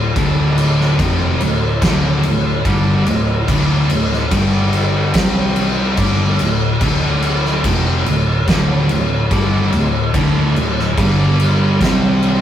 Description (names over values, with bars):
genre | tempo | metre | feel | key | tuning
stoner and doom metal | 72 BPM | 4/4 | straight | D minor | A4 = 437 Hz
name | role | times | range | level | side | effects
heavy high-gain guitar | riff | 0.0-12.4 s | D2 to C4 | -21 LUFS | right 1 dB | distortion
thick fuzz guitar | riff | 0.0-12.4 s | D2 to C4 | -18 LUFS | left 1 dB | distortion
hollow-body short-scale fingered electric bass | bass | 0.0-12.4 s | D1 to C2 | -22 LUFS | equal | overdrive
oversized low-tuned drum kit | drums | 0.2-12.4 s | crash cymbal, kick drum, snare drum | -18 LUFS | equal | none
thick fuzz guitar | riff | 10.1-12.4 s | D2 to C4 | -17 LUFS | right 2 dB | distortion
room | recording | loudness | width
moderate stone room reverb, RT60 1.0 s | rough rehearsal-room recording | -13 LUFS | side -10 dB against mid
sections
0.0-12.4 A section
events
none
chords
0.0 Dm; 4.3 G5; 5.2 C5; 6.0 Dm; 11.0 G5; 11.8 C5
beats
| 0.17 1.00 1.83 2.66 | 3.49 4.32 5.15 5.98 | 6.82 7.65 8.48 9.31 | 10.15 10.98 11.81